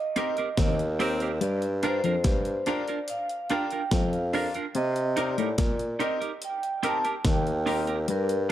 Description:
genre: roots reggae.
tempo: 72 BPM.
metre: 4/4.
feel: straight.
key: unclear.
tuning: A4 = 440 Hz.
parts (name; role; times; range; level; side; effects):
vibraphone with medium mallets; melody; 0.0-8.5 s; Bb4 to A5; -31 LUFS; right 2 dB; dub echo.
semi-hollow electric guitar; accompaniment; 0.2-8.5 s; C4 to Bb4; -32 LUFS; right 5 dB; dub echo.
bright grand piano; stabs; 0.2-8.5 s; C4 to Bb4; -34 LUFS; left 6 dB; none.
breakbeat sampler-style drum kit; drums; 0.2-8.5 s; hi-hat, kick drum, snare drum; -28 LUFS; equal; overdrive.
bright tenor saxophone; second line; 0.6-1.3 s; C4; -35 LUFS; right 3 dB; dub echo.
mellow electric guitar; riff; 0.6-8.3 s; Eb3 to C4; -32 LUFS; left 5 dB; none.
warm bassoon; bass; 0.6-8.5 s; Eb2 to C3; -28 LUFS; equal; none.
room: light reverb, studio ambience.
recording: none.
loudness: -24 LUFS.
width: side -12 dB against mid.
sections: 0.0-8.5 A section.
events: band accent 0.0-1.4.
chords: 0.0 Eb6; 1.4 Gm7; 4.8 Cm7; 6.4 Eb6.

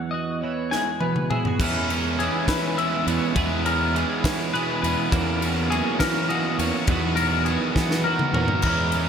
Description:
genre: math rock and midwest emo.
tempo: 68 BPM (dotted quarters).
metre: 6/8.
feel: straight.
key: unclear.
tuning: A4 = 440 Hz.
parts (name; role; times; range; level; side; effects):
twelve-string electric guitar; accompaniment; 0.0-9.1 s; E2 to G#4; -28 LUFS; right 7 dB; analog chorus.
twangy electric guitar; arpeggios; 0.0-9.1 s; G#4 to G#5; -27 LUFS; left 4 dB; lush chorus.
crisp fusion drum kit; drums; 0.7-9.1 s; crash cymbal, kick drum, ride cymbal, snare drum, splash cymbal, toms; -26 LUFS; left 1 dB; gated reverb.
overdriven semi-hollow guitar; riff; 1.6-9.1 s; B2 to F#4; -27 LUFS; right 2 dB; none.
fuzz fingered electric bass; bass; 1.6-9.1 s; E2 to E3; -27 LUFS; equal; overdrive.
room: moderate lush hall reverb, RT60 1.9 s, small room reverb.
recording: bright 1980s-style digital production.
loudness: -20 LUFS.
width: side -7 dB against mid.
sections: 0.0-1.6 A section; 1.6-9.1 B section.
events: break 0.0-1.6; drum fill 0.7-1.6, 7.8-8.6.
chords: 0.0 Emaj9; 1.6 C#m7/E; 5.1 F#7/E; 6.9 Bmaj7/E.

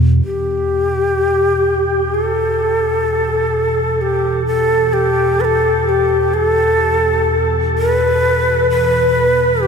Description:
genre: dark ambient drone.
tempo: 64 BPM.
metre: 4/4.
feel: straight.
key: E minor.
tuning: A4 = 439 Hz.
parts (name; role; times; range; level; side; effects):
deep rumbling drone; drone; 0.0-9.7 s; E2 to B2; -20 LUFS; right 1 dB; built-in reverb.
breathy shakuhachi; melody; 0.2-9.7 s; G4 to B4; -14 LUFS; left 1 dB; shimmer reverb, tape echo.
room: wet huge ambient reverb, RT60 8.2 s.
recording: none.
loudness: -13 LUFS.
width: side -6 dB against mid.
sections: 0.3-9.7 A section.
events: fade-in on synth drone 0.3-9.7.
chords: 0.3 Em.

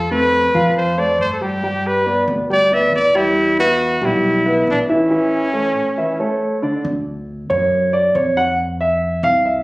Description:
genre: latin, Cuban son and guajira.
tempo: 138 BPM.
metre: 4/4.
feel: straight.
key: unclear.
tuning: A4 = 435 Hz.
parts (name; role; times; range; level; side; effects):
clear trumpet; melody; 0.0-6.4 s; C#4 to E5; -17 LUFS; equal; none.
dark baby grand piano; arpeggios; 0.0-9.6 s; D3 to G5; -17 LUFS; equal; none.
upright bass; bass; 0.0-9.6 s; A1 to G2; -26 LUFS; equal; none.
room: moderate large studio reverb, RT60 1.0 s.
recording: recorded on a phone in the room, club reverb.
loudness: -14 LUFS.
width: side -21 dB against mid.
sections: 0.0-6.8 A section; 6.8-9.6 B section.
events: break 5.1-6.8; grand piano solo 6.8-9.6.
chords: 0.0 F; 1.6 G; 3.4 Em; 5.1 A; 6.8 D; 8.6 F5.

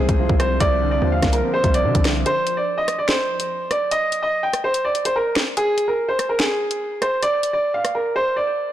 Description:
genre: hip hop, drill.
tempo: 145 BPM.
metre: 4/4.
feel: half-time.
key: unclear.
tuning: A4 = 439 Hz.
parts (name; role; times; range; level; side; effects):
bright upright piano; melody; 0.0-8.7 s; Ab4 to G5; -20 LUFS; right 1 dB; low-pass filter, tape echo.
felt-muted upright piano; accompaniment; 0.0-2.3 s; C2 to C5; -25 LUFS; left 2 dB; low-pass filter.
ethereal airy pad; sustained chords; 0.0-2.2 s; F3 to C5; -31 LUFS; right 3 dB; ensemble chorus, built-in reverb, phaser.
distorted 808-style bass; bass; 0.0-2.2 s; C2 to C3; -22 LUFS; equal; distortion.
drill drum kit; drums; 0.1-7.9 s; finger snaps, hi-hat, kick drum, rim click, snare drum; -22 LUFS; equal; soft clipping on snare.
room: light reverb.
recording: blown-out, overdriven recording, overdrive.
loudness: -18 LUFS.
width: side -12 dB against mid.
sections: 0.0-2.3 A section; 2.3-8.7 B section.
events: break 2.3-8.7; drums muted 8.1-8.7.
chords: 0.0 Fm/C; 0.6 Bbadd9/C; 2.3 N.C..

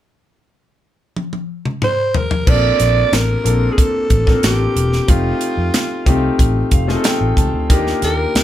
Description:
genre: polished 1980s jazz-funk pop.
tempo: 92 BPM.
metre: 4/4.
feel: straight.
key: Bb major.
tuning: A4 = 440 Hz.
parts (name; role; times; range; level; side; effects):
tight funk drum kit; drums; 1.2-8.4 s; crash cymbal, hi-hat, kick drum, snare drum, toms; -16 LUFS; equal; none.
growling alto saxophone; melody; 1.8-8.4 s; F4 to D5; -19 LUFS; right 3 dB; none.
warm concert grand piano; accompaniment; 2.5-8.4 s; A3 to A5; -19 LUFS; left 3 dB; none.
vintage muted fingered electric bass; bass; 2.5-8.4 s; E1 to F2; -18 LUFS; equal; none.
room: moderate studio ambience, RT60 0.5 s.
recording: band playing live in one room.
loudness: -13 LUFS.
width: side -12 dB against mid.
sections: 0.0-2.5 A section; 2.5-8.4 B section.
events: drum fill 1.2-2.5; grand piano fill 6.4-7.7.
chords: 0.0 N.C.; 2.5 Bbmaj7; 5.1 F7; 7.7 Ebmaj7.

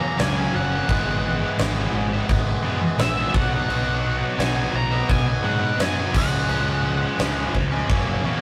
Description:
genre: quiet-loud alternative rock.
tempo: 86 BPM.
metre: 4/4.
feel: straight.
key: unclear.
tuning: A4 = 440 Hz.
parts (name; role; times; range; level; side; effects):
octave-fuzz lead guitar; melody; 0.0-7.5 s; E5 to A#5; -29 LUFS; equal; distortion.
distorted electric guitar; riff; 0.0-8.4 s; F#2 to E4; -29 LUFS; equal; overdrive.
scooped high-gain guitar; riff; 0.0-8.4 s; F#2 to E4; -30 LUFS; equal; distortion.
fuzz picked electric bass; bass; 0.0-8.4 s; F#1 to G#2; -28 LUFS; equal; overdrive.
huge arena drum kit; drums; 0.2-8.1 s; crash cymbal, kick drum, snare drum; -27 LUFS; equal; none.
room: light reverb.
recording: rough rehearsal-room recording, tube saturation.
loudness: -22 LUFS.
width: mono.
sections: 0.0-8.4 A section.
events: none.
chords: 0.0 F#add9; 0.9 Eadd9/G#; 3.3 B; 6.1 C#sus4; 7.9 F#.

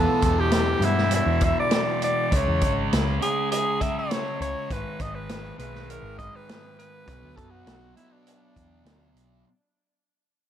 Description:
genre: psychedelic rock.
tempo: 101 BPM.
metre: 4/4.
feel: straight.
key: unclear.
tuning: A4 = 440 Hz.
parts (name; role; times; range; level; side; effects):
edgy alto saxophone; melody; 0.0-9.2 s; D4 to E5; -27 LUFS; equal; tape echo.
thick fuzz guitar; riff; 0.0-9.4 s; E2 to C#4; -28 LUFS; equal; distortion, phaser.
hollow-body short-scale picked electric bass; bass; 0.0-9.4 s; G#1 to G2; -27 LUFS; equal; none.
vintage drum kit; drums; 0.2-9.3 s; hi-hat, kick drum, snare drum; -28 LUFS; equal; none.
room: light reverb.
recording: none.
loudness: -21 LUFS.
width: side -10 dB against mid.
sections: 0.0-9.5 A section.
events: fade-out 0.0-9.5.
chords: 0.0 Em; 2.3 C#5; 4.7 G#m; 7.1 Bm.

